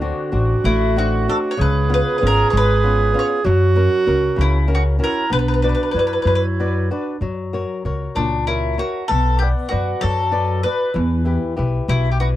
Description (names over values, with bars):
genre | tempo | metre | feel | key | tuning
italian folk, Italian serenade | 64 BPM (dotted quarters) | 6/8 | rubato | B minor | A4 = 443 Hz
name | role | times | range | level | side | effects
warm clarinet | second line | 0.0-7.2 s | D4 to G#4 | -21 LUFS | right 5 dB | none
flamenco guitar | accompaniment | 0.0-12.4 s | A#2 to F#5 | -24 LUFS | left 3 dB | none
upright bass | bass | 0.0-12.4 s | G#1 to F#2 | -19 LUFS | equal | none
mandolin | melody | 0.7-12.3 s | D4 to C#5 | -21 LUFS | left 1 dB | tape echo
room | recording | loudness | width
little or no reverb | dry, close 1970s-style studio recording | -16 LUFS | side -14 dB against mid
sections
0.0-7.2 A section; 7.2-12.4 A section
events
none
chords
0.0 D7; 1.6 C#7; 3.5 F#; 5.3 Bm; 7.2 F#; 9.1 Bm; 11.0 Em